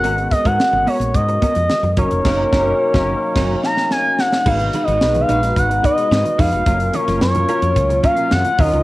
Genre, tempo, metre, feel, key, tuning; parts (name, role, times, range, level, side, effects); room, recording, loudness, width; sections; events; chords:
polished 1980s jazz-funk pop; 109 BPM; 4/4; straight; G# dorian; A4 = 436 Hz
expressive portamento lead; melody; 0.0-8.8 s; C#5 to A#5; -17 LUFS; equal; chorus
barky tine electric piano; accompaniment; 0.0-8.8 s; F#3 to C#5; -24 LUFS; left 2 dB; overdrive, ensemble chorus, cassette tape
hollow soft pad; sustained chords; 0.0-8.8 s; D#3 to B4; -30 LUFS; equal
clean electric guitar; riff; 0.0-8.8 s; F#3 to B4; -25 LUFS; right 4 dB; ensemble chorus, cassette tape
woody fretless electric bass; bass; 0.0-8.8 s; E#1 to G#2; -20 LUFS; equal
crisp fusion drum kit; drums; 0.0-8.8 s; crash cymbal, hi-hat, kick drum, snare drum; -21 LUFS; equal; cassette tape
congas; percussion; 0.2-8.7 s; -31 LUFS; left 2 dB
moderate spring reverb, RT60 1.4 s, small room ambience; home recording on cassette; -14 LUFS; side -18 dB against mid
0.0-4.5 A section; 4.5-8.8 B section
band accent 2.3-4.5; drum fill 3.4-4.5; tine electric piano fill 3.4-4.5
0.0 G#m11; 2.0 F#6; 4.5 G#m7; 6.7 F#maj7